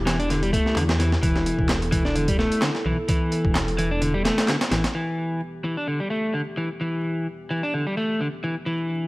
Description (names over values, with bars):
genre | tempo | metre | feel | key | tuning
breakbeat, breaks | 129 BPM | 4/4 | swing 55% on 16ths | E minor pentatonic | A4 = 440 Hz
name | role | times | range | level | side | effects
dark analog pad | sustained chords | 0.0-9.1 s | E3 to A4 | -32 LUFS | equal | chorus, sidechain pumping
dark detuned saw bass | bass | 0.0-4.9 s | E1 to E2 | -26 LUFS | equal | none
electric guitar at the edge of break-up | riff | 0.1-9.1 s | D3 to D4 | -24 LUFS | equal | low-pass filter, tape echo
breakbeat sampler-style drum kit | drums | 0.1-4.9 s | hi-hat, kick drum, snare drum | -24 LUFS | equal | none
electronic handclaps | drums | 0.8-4.6 s | none | -34 LUFS | equal | none
room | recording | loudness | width
light reverb | dry, gritty hardware recording, vinyl crackle | -21 LUFS | side -21 dB against mid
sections
0.0-4.9 A section; 4.9-9.1 B section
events
kick drops out 4.0-4.9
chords
0.0 Em